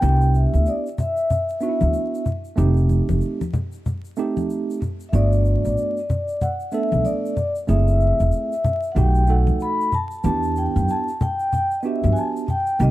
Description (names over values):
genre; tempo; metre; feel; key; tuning
hip hop, jazz-hop; 94 BPM; 4/4; swing 61% on 16ths; unclear; A4 = 439 Hz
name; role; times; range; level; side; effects
vibraphone with soft mallets; melody; 0.0-12.9 s; D5 to B5; -23 LUFS; left 2 dB; none
tine electric piano; accompaniment; 0.0-12.9 s; A3 to A4; -26 LUFS; right 6 dB; medium stereo tremolo
upright bass; bass; 0.0-12.9 s; E1 to G2; -18 LUFS; equal; none
egg shaker and congas; percussion; 0.0-12.9 s; none; -25 LUFS; left 1 dB; none
room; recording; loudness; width
light reverb, small room ambience; dark, warm production, vinyl crackle; -18 LUFS; side -15 dB against mid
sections
0.0-12.9 A section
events
none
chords
0.0 Cmaj9; 2.6 F9; 5.1 Gmaj9; 7.7 F#m7b5; 9.0 B7b13; 10.2 Em9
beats
| 0.03 0.67 1.30 1.94 | 2.58 3.22 3.86 4.50 | 5.13 5.77 6.41 7.05 | 7.69 8.33 8.96 9.60 | 10.24 10.88 11.52 12.16 | 12.79